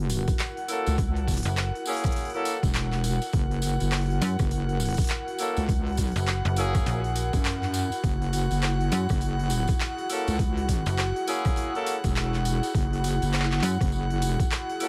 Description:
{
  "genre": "glitch hop",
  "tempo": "102 BPM",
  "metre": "4/4",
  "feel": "swing 61% on 16ths",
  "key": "unclear",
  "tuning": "A4 = 443 Hz",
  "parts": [
    { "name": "warbly tape-like pad", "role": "sustained chords", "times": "0.0-14.9 s", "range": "E4 to A#4", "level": "-38 LUFS", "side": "equal", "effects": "chorus, built-in reverb, vintage 12-bit sampler grit, sidechain pumping" },
    { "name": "wobble bass", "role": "bass", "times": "0.0-14.4 s", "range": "E1 to F#2", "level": "-29 LUFS", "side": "equal", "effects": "chorus" },
    { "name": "airy breathy pad", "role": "texture", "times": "0.0-14.9 s", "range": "F#5", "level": "-36 LUFS", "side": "equal", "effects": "chorus, sidechain pumping" },
    { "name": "glitchy drum kit", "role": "drums", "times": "0.1-14.9 s", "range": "handclaps, hi-hat, rim click", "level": "-37 LUFS", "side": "equal", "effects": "none" },
    { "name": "tambourine", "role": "percussion", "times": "0.1-14.9 s", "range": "none", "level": "-42 LUFS", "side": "equal", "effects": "none" },
    { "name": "electronic kick drum", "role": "drums", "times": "0.3-14.5 s", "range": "none", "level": "-29 LUFS", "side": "equal", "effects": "overdrive" },
    { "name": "clear horn section", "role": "stabs", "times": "0.7-14.9 s", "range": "A#3 to A4", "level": "-35 LUFS", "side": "equal", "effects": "sidechain pumping, tape echo" },
    { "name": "slap-like FM bass", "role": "bass", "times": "1.5-13.8 s", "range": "F#1 to F#2", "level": "-28 LUFS", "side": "equal", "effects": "none" }
  ],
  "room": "little or no reverb",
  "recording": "vinyl crackle",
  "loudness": "-26 LUFS",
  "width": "mono",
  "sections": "0.0-14.9 A section",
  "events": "none",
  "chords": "0.0 F#7"
}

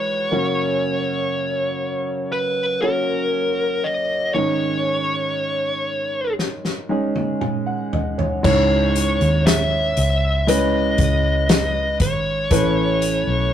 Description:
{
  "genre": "pop ballad",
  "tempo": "59 BPM",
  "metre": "4/4",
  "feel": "straight",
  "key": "C# minor from 8.4 s",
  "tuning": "A4 = 438 Hz",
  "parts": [
    { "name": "fuzz lead guitar", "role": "melody", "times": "0.0-13.5 s", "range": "A#4 to E5", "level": "-22 LUFS", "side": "equal", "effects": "distortion" },
    { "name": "clear grand piano", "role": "accompaniment", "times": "0.0-13.5 s", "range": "E2 to G#5", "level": "-22 LUFS", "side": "right 1 dB", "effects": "none" },
    { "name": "loose indie drum kit", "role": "drums", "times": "6.4-13.3 s", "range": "crash cymbal, hi-hat, kick drum, snare drum, toms", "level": "-21 LUFS", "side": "left 1 dB", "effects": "none" },
    { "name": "vintage muted fingered electric bass", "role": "bass", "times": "8.4-13.5 s", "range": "G#1 to D#2", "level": "-21 LUFS", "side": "equal", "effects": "none" }
  ],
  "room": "light reverb",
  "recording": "rough rehearsal-room recording",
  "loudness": "-18 LUFS",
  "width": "side -10 dB against mid",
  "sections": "0.0-8.4 A section; 8.4-13.5 B section",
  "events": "drum fill 6.4-8.4",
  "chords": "0.3 F#; 4.3 G#sus4; 8.4 C#m; 12.5 Aadd9"
}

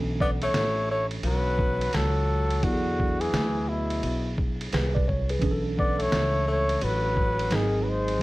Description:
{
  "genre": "hip hop, jazz-hop",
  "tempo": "86 BPM",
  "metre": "4/4",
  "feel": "swing 64% on 16ths",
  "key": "B dorian",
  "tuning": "A4 = 439 Hz",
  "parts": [
    { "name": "tine electric piano", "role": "accompaniment", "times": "0.0-8.2 s", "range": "E3 to D5", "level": "-32 LUFS", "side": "right 2 dB", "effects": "medium stereo tremolo, plate reverb" },
    { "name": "upright bass", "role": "bass", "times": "0.0-8.2 s", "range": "G#1 to E2", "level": "-28 LUFS", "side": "equal", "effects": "none" },
    { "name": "breathy flugelhorn", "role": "melody", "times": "0.2-8.2 s", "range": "E4 to D5", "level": "-28 LUFS", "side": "equal", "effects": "plate reverb" },
    { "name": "breathy tenor saxophone", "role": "second line", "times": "0.2-8.2 s", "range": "B2 to B3", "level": "-32 LUFS", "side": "left 3 dB", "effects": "plate reverb" },
    { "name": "lo-fi sampler-style drum kit", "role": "drums", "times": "0.2-8.2 s", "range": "hi-hat, kick drum, ride cymbal, snare drum", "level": "-30 LUFS", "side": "equal", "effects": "none" }
  ],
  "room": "light reverb",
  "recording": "vinyl crackle",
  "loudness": "-23 LUFS",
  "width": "side -19 dB against mid",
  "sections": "0.0-8.2 A section",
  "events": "none",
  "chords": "0.0 Bm11; 2.6 E9; 5.4 Bm11; 7.5 G#7"
}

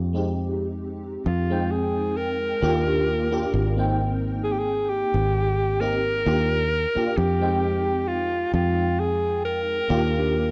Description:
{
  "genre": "vaporwave",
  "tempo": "66 BPM",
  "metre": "4/4",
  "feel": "swing 54% on 16ths",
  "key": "Eb major",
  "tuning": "A4 = 440 Hz",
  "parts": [
    { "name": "fingered electric bass", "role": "bass", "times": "0.0-10.5 s", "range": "Ab1 to F2", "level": "-28 LUFS", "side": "equal", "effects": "tube saturation" },
    { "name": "FM electric piano with soft pad layer", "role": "accompaniment", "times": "0.1-10.5 s", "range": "Ab3 to G5", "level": "-30 LUFS", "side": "equal", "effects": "ensemble chorus, analog delay" },
    { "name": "clear alto saxophone", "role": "melody", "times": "1.3-10.5 s", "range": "F4 to Bb4", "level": "-27 LUFS", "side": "equal", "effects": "tape echo" }
  ],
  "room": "light reverb, studio reverb",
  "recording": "dry, gritty hardware recording",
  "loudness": "-24 LUFS",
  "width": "mono",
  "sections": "0.0-2.6 A section; 2.6-10.5 B section",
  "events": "filter sweep 0.0-2.6",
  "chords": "0.4 Fm9; 2.6 Ebmaj7; 4.0 Abmaj7; 6.3 Ebmaj7; 7.6 Fm9; 9.9 Ebmaj7"
}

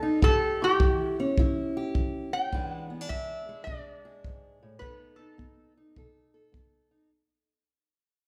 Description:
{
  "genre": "acoustic country blues, solo or duo",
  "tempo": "104 BPM",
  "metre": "4/4",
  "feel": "swing 66% on 8ths",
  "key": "unclear",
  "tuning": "A4 = 435 Hz",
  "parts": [
    { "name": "metal-body resonator slide guitar", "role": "melody", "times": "0.0-5.7 s", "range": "G4 to G5", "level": "-31 LUFS", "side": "equal", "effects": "none" },
    { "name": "fingerpicked steel-string acoustic guitar", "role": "accompaniment", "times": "0.0-7.1 s", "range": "E2 to A4", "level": "-34 LUFS", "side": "equal", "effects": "none" },
    { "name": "kick drum", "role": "drums", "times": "0.2-6.7 s", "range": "none", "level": "-29 LUFS", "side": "equal", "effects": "none" }
  ],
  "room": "moderate recital hall reverb, RT60 1.5 s",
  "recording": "heard from further back in the room",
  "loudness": "-27 LUFS",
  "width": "mono",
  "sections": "0.0-7.1 A section",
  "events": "fade-out 0.0-7.1",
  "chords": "0.2 A7; 2.5 E7; 4.8 B7"
}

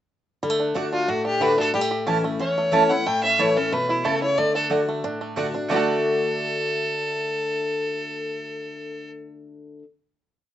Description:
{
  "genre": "bluegrass",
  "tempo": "182 BPM",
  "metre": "4/4",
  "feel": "straight",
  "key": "D major",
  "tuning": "A4 = 444 Hz",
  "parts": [
    { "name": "picked steel-string acoustic guitar", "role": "accompaniment", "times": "0.4-9.8 s", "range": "E2 to F#4", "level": "-26 LUFS", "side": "left 3 dB", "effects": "none" },
    { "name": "bluegrass banjo", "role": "arpeggios", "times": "0.4-9.8 s", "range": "G3 to A4", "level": "-29 LUFS", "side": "right 4 dB", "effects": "none" },
    { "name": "mandolin", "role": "stabs", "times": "0.8-9.8 s", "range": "A3 to A5", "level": "-26 LUFS", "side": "right 7 dB", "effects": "none" },
    { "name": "clear fiddle", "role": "melody", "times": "0.9-9.1 s", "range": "E4 to G5", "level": "-24 LUFS", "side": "left 1 dB", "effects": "none" }
  ],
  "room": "moderate small room ambience, RT60 0.5 s",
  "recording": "rough home demo mix, nothing above 8.0 kHz",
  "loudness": "-20 LUFS",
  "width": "side -11 dB against mid",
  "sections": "0.4-5.7 A section; 5.7-8.3 final chord",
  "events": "none",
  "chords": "0.4 D; 1.7 A; 4.4 D"
}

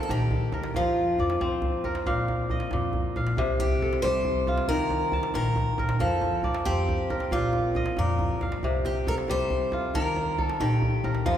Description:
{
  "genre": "west african traditional, West African string and xylophone music",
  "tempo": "91 BPM (dotted quarters)",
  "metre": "12/8",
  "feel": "straight",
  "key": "unclear",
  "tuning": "A4 = 439 Hz",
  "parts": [
    { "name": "picked steel-string acoustic guitar", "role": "melody", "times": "0.0-11.4 s", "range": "F4 to C5", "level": "-30 LUFS", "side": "equal", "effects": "none" },
    { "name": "kora", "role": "arpeggios", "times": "0.0-11.4 s", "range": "Bb2 to A5", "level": "-28 LUFS", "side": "left 1 dB", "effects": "none" },
    { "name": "upright bass", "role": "bass", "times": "0.1-11.4 s", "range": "Bb1 to F2", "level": "-30 LUFS", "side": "equal", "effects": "none" },
    { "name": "djembe", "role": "percussion", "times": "0.1-11.4 s", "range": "none", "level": "-32 LUFS", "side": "right 2 dB", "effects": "none" }
  ],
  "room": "wet church reverb, RT60 4.1 s",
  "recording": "recorded in a church or concert hall",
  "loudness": "-24 LUFS",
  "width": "side -10 dB against mid",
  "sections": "0.0-11.4 A section",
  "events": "none",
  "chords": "0.0 Eb; 0.8 F5; 2.1 Bb5; 3.4 C5; 4.7 Eb5; 6.0 F; 7.3 Bb5; 8.6 C5; 9.9 Eb"
}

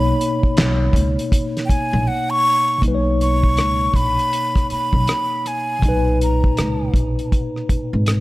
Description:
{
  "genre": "R&B, neo-soul",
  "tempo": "80 BPM",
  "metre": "4/4",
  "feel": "swing 61% on 16ths",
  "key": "B major",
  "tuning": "A4 = 441 Hz",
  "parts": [
    { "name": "breathy jazz flute", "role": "melody", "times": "0.0-6.9 s", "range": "F#5 to C#6", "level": "-21 LUFS", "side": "equal", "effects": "none" },
    { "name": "mellow tine electric piano", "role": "accompaniment", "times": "0.0-8.2 s", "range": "A#2 to C#5", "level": "-22 LUFS", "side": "left 1 dB", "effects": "medium stereo tremolo" },
    { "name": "upright bass", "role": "bass", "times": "0.0-8.2 s", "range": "G#1 to C#2", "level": "-20 LUFS", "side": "equal", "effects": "none" },
    { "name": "cloth-damped thuddy drum kit", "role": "drums", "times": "0.2-8.2 s", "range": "handclaps, hi-hat, kick drum, rim click, snare drum", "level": "-18 LUFS", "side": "equal", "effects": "none" }
  ],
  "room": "light reverb, small room ambience",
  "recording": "none",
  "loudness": "-16 LUFS",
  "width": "side -18 dB against mid",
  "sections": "0.0-2.8 A section; 2.8-8.2 B section",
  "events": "flute solo 0.0-2.8; silent gap 2.1-2.8",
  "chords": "0.0 Bmaj9"
}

